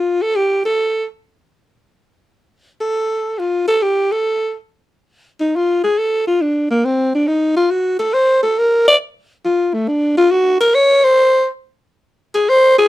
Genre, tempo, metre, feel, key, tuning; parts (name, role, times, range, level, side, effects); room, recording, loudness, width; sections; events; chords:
jazz; 138 BPM; 4/4; swing 68% on 8ths; A4 = 439 Hz
growling alto saxophone; solo; 0.0-12.9 s; A3 to D5; -13 LUFS; equal
light reverb; close, detailed microphones; -13 LUFS; side -16 dB against mid
0.0-5.1 A section; 5.1-12.9 B section